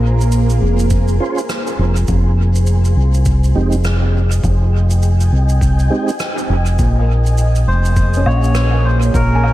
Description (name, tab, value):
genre	ambient dub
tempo	102 BPM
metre	4/4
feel	swing 60% on 16ths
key	Bb dorian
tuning	A4 = 440 Hz
part	granular cloud pad	sustained chords	0.0-9.5 s	Bb3 to Ab5	-23 LUFS	right 1 dB	built-in reverb, vintage 12-bit sampler grit
part	felt-muted upright piano	arpeggios	0.0-2.1, 7.0-9.5 s	Bb3 to Ab5	-25 LUFS	left 1 dB	analog delay
part	fingered electric bass	bass	0.0-9.5 s	F1 to C2	-13 LUFS	equal	none
part	shaker, rim click and woodblock	drums	0.2-9.5 s	none	-28 LUFS	equal	dub echo
part	electronic kick drum	drums	0.9-9.3 s	none	-17 LUFS	equal	none
part	mellow tonewheel organ	stabs	1.2-6.1 s	Ab3 to C5	-23 LUFS	right 3 dB	chorus vibrato, fast rotary speaker, dub echo
part	melodica	melody	7.7-9.5 s	Bb4 to Db5	-21 LUFS	equal	analog delay
room	studio ambience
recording	echo-heavy mix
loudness	-12 LUFS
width	side -15 dB against mid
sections	0.0-9.5 A section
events	none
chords	0.0 Bb7sus2; 2.1 Fm9; 6.8 Bbm9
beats	0.32 0.91 1.49 | 2.08 2.67 3.26 3.85 | 4.43 5.02 5.61 6.20 | 6.79 7.38 7.96 8.55 | 9.14